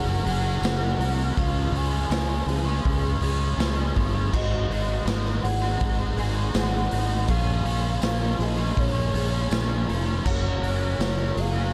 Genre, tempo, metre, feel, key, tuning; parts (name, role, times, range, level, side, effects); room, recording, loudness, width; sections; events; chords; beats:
rock, shoegaze and dream pop; 81 BPM; 4/4; straight; Db major; A4 = 440 Hz
pure breathy sine lead; melody; 0.0-11.7 s; Db5 to Ab5; -35 LUFS; equal; chorus, slapback echo
picked twelve-string acoustic guitar; arpeggios; 0.0-11.7 s; F4 to Bb4; -40 LUFS; equal; ensemble chorus, slapback echo
biting overdriven guitar; riff; 0.0-11.7 s; Bb2 to Db5; -33 LUFS; equal; analog chorus
twangy electric guitar; riff; 0.0-11.7 s; barely audible
fuzz fingered electric bass; bass; 0.0-11.7 s; F1 to Db2; -28 LUFS; equal; overdrive
raw garage drum kit; drums; 0.3-11.5 s; crash cymbal, hi-hat, kick drum, snare drum; -30 LUFS; equal
tambourine; percussion; 0.6-11.2 s; -46 LUFS; equal
little or no reverb; dark, warm production; -25 LUFS; mono
0.0-11.7 A section
0.0 Gbmaj7; 1.4 Db; 4.3 Ab7; 7.3 Bbm7; 10.3 Gbmaj7
0.63 | 1.37 2.11 2.85 3.59 | 4.33 5.07 5.81 6.56 | 7.30 8.04 8.78 9.52 | 10.26 11.01